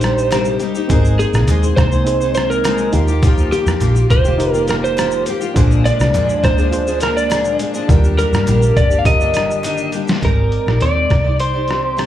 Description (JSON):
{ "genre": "indie pop, bedroom pop", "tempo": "103 BPM", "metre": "4/4", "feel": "straight", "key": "Eb major", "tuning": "A4 = 440 Hz", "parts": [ { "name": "electric slide guitar", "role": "melody", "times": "0.0-12.1 s", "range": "G4 to F5", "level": "-18 LUFS", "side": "right 1 dB", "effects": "analog chorus, slapback echo, ping-pong delay" }, { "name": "picked steel-string acoustic guitar", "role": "accompaniment", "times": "0.0-12.1 s", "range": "Bb2 to D5", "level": "-23 LUFS", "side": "left 6 dB", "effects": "lush chorus, vibrato effect, slapback echo" }, { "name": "reed electric piano", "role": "accompaniment", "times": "0.0-10.3 s", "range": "D3 to C5", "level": "-24 LUFS", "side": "right 3 dB", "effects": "cassette tape, slapback echo" }, { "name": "vintage muted picked electric bass", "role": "bass", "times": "0.0-12.1 s", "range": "F1 to G2", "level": "-17 LUFS", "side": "equal", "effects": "none" }, { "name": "trip hop sampler-style drum kit", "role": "drums", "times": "0.0-12.1 s", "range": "hi-hat, kick drum, rim click, shaker, snare drum", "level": "-18 LUFS", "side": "equal", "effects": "overdrive" }, { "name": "group handclap", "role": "percussion", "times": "0.3-9.8 s", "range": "none", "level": "-37 LUFS", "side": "right 3 dB", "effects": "none" }, { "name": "hollow soft pad", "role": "sustained chords", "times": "0.9-10.2 s", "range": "D3 to G4", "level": "-26 LUFS", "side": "equal", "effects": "chorus" } ], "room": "light reverb", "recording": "live gig heard through the venue's PA, club reverb", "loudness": "-13 LUFS", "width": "side -12 dB against mid", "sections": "0.0-10.2 A section; 10.2-12.1 B section", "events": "drum fill 9.6-10.2", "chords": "0.0 Cm7; 0.9 Abadd9; 2.9 Ebadd9; 5.6 Bb7; 7.9 Ebmaj7; 10.2 Abmaj9#11" }